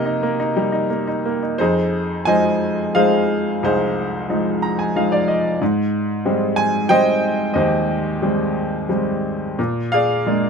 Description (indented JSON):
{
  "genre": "classical, lyrical solo piano",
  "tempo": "89 BPM",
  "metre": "3/4",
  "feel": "rubato",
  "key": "unclear",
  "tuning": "A4 = 442 Hz",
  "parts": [
    { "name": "bright baby grand piano", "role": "solo", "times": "0.0-10.5 s", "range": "C2 to Bb5", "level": "-17 LUFS", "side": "equal", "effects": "none" }
  ],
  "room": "light reverb",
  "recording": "close, detailed microphones",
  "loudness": "-17 LUFS",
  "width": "side -6 dB against mid",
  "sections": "0.0-1.6 A section; 1.6-10.5 B section",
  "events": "grand piano fill 4.3-5.6",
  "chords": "0.0 Cm7; 1.6 Fm7; 5.6 Abmaj7; 9.6 Bb7"
}